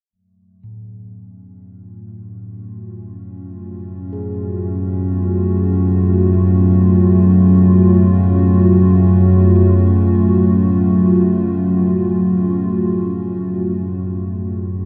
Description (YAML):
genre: dark ambient drone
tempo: free time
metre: none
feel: none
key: F# harmonic minor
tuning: A4 = 440 Hz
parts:
  - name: dark analog pad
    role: sustained chords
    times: 2.7-14.9 s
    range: A3 to F#4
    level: -22 LUFS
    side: equal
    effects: chorus
  - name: deep rumbling drone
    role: drone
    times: 3.3-14.9 s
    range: F#2 to F#3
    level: -16 LUFS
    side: equal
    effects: built-in reverb
  - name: quartz singing bowl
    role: arpeggios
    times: 0.6-12.0 s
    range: A2 to G#4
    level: -33 LUFS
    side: equal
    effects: none
room: wet huge ambient reverb, RT60 9.1 s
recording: dark, warm production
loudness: -14 LUFS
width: mono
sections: 0.1-14.9 A section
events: fade-in on analog synth pad 0.1-14.9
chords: 0.1 F#m